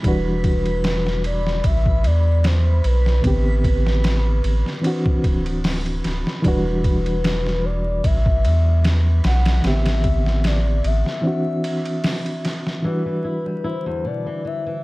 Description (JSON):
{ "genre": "trip hop", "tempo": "75 BPM", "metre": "4/4", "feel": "swing 54% on 16ths", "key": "E minor", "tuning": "A4 = 438 Hz", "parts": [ { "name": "bright reed electric piano", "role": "accompaniment", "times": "0.0-14.8 s", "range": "D3 to G4", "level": "-25 LUFS", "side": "equal", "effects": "tremolo, low-pass filter" }, { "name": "round analog bass", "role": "bass", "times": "0.0-11.0 s", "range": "D1 to E2", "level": "-19 LUFS", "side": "equal", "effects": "none" }, { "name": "trip hop sampler-style drum kit", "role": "drums", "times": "0.0-12.8 s", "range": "hi-hat, kick drum, ride cymbal, snare drum", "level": "-23 LUFS", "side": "equal", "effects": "overdrive, studio reverb" }, { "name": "backwards swelling texture", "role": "texture", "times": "0.0-12.9 s", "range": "B5", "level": "-41 LUFS", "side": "right 3 dB", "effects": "built-in reverb" }, { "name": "pure breathy sine lead", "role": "melody", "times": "0.1-14.8 s", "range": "B4 to F#5", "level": "-27 LUFS", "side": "left 1 dB", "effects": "chorus, phaser, dub echo" }, { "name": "deep dark ambient pad", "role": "sustained chords", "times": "13.8-14.8 s", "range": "D4", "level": "-38 LUFS", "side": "left 3 dB", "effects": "none" }, { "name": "flamenco guitar", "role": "arpeggios", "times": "12.8-14.8 s", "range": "E2 to E4", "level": "-29 LUFS", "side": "left 2 dB", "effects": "low-pass filter" } ], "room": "digital ambience", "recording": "dark, warm production, vinyl crackle", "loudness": "-17 LUFS", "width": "side -21 dB against mid", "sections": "0.0-12.8 A section; 12.8-14.8 B section", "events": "break 11.2-12.8; filter sweep on reed electric piano 12.8-14.8", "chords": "0.0 Em9; 3.2 Am11; 4.8 D9; 6.4 Em9; 9.6 Am11; 11.2 D9; 12.8 Em9" }